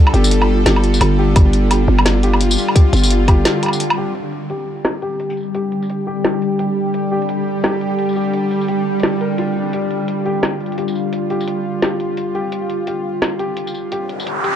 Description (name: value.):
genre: half-time drum and bass.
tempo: 172 BPM.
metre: 4/4.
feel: swing 59% on 16ths, half-time.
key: unclear.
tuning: A4 = 441 Hz.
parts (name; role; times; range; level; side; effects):
bowed-like drone; sustained chords; 0.0-14.6 s; D3 to A4; -20 LUFS; equal; built-in reverb, sidechain pumping.
felt-muted upright piano; arpeggios; 0.0-14.6 s; D4 to Bb4; -25 LUFS; left 4 dB; low-pass filter, tape echo.
pulsing gated texture; texture; 0.0-4.2 s; D4 to F4; -31 LUFS; right 5 dB; none.
growling 808-style bass; bass; 0.1-3.4 s; G1; -14 LUFS; equal; none.
drum and bass drum kit; drums; 0.1-14.5 s; crash cymbal, hi-hat, snare drum, tambourine, woodblock; -19 LUFS; equal; low-pass filter on hats, low-pass filter on perc, low-pass filter on snare, low-pass filter on cymbals, low-pass filter on room.
electronic kick drum; drums; 1.4-3.4 s; none; -10 LUFS; equal; none.
noise sweep; sound effects; 14.0-14.6 s; none; -21 LUFS; right 1 dB; none.
room: little or no reverb.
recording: dry, gritty hardware recording, cassette tape.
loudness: -15 LUFS.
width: side -10 dB against mid.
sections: 0.0-4.2 A section; 4.2-14.6 B section.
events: drop 0.0-4.2; filter sweep on synth drone 4.2-14.6; filter sweep on felt piano 4.2-14.6; noise sweep 14.0-14.6.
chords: 0.0 G5.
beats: 0.31 0.66 1.01 | 1.36 1.71 2.06 2.40 | 2.75 3.10 3.45 3.80 | 4.15 4.50 4.85 5.20 | 5.54 5.89 6.24 6.59 | 6.94 7.29 7.64 7.99 | 8.34 8.68 9.03 9.38 | 9.73 10.08 10.43 10.78 | 11.13 11.47 11.82 12.17 | 12.52 12.87 13.22 13.57 | 13.92 14.27.